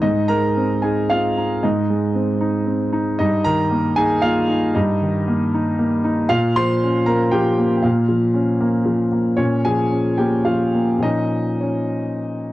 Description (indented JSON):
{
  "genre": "neoclassical minimalist piano",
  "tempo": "115 BPM",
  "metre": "3/4",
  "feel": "rubato",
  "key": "Bb dorian",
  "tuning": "A4 = 441 Hz",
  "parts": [
    { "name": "warm grand piano", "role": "solo", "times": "0.0-12.5 s", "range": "G2 to C6", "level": "-16 LUFS", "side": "equal", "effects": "cassette tape" }
  ],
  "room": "moderate studio reverb, RT60 0.6 s",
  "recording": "home recording on cassette",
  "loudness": "-16 LUFS",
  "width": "side -16 dB against mid",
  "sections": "0.0-12.5 A section",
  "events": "none",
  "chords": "0.0 Ab; 3.2 Eb/G; 6.3 Bbm"
}